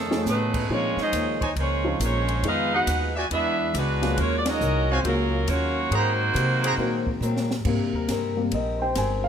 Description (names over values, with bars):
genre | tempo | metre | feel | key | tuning
jazz, big band swing | 138 BPM | 4/4 | swing 65% on 8ths | unclear | A4 = 440 Hz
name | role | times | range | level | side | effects
clear saxophone section | melody | 0.0-7.2 s | Eb3 to Gb5 | -26 LUFS | right 1 dB | none
brilliant trombone section | second line | 0.0-7.2 s | Db3 to Gb4 | -31 LUFS | right 3 dB | none
picked acoustic archtop guitar | accompaniment | 0.0-9.3 s | F2 to Bb4 | -33 LUFS | left 6 dB | none
upright bass | bass | 0.0-9.3 s | G1 to C3 | -27 LUFS | equal | none
dark baby grand piano | accompaniment | 0.1-9.3 s | C3 to Ab5 | -29 LUFS | left 2 dB | none
open jazz drum kit | drums | 0.1-9.1 s | crash cymbal, hi-hat, kick drum, ride cymbal, snare drum | -33 LUFS | equal | none
mellow trumpet section | stabs | 1.4-6.7 s | Eb4 to Bb5 | -30 LUFS | right 2 dB | none
clear trombone section | sustained chords | 7.9-9.3 s | C4 to C5 | -32 LUFS | left 4 dB | none
room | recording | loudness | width
light reverb | none | -22 LUFS | side -8 dB against mid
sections
0.0-7.7 A section; 7.7-9.3 B section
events
drum fill 0.0, 7.2-7.7; band accent 4.4; grand piano solo 7.7-9.3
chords
0.0 F7alt; 0.7 Bbm11; 2.4 Fm7b5; 3.3 E9; 4.2 Ebm11; 5.9 Ab9; 7.7 Abmaj9